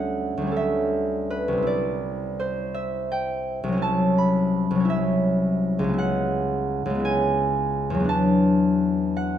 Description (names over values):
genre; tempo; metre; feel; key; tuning
classical, solo harp piece; 56 BPM (dotted quarters); 6/8; rubato; D major; A4 = 438 Hz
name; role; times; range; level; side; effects
concert harp; solo; 0.0-9.4 s; C2 to B5; -21 LUFS; equal; none
room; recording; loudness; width
light reverb; close, detailed microphones; -21 LUFS; side -10 dB against mid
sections
0.0-9.4 A section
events
none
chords
0.0 A9/D; 1.7 Cadd9; 3.8 Dmaj9/C; 6.0 C#m7; 8.1 E9sus4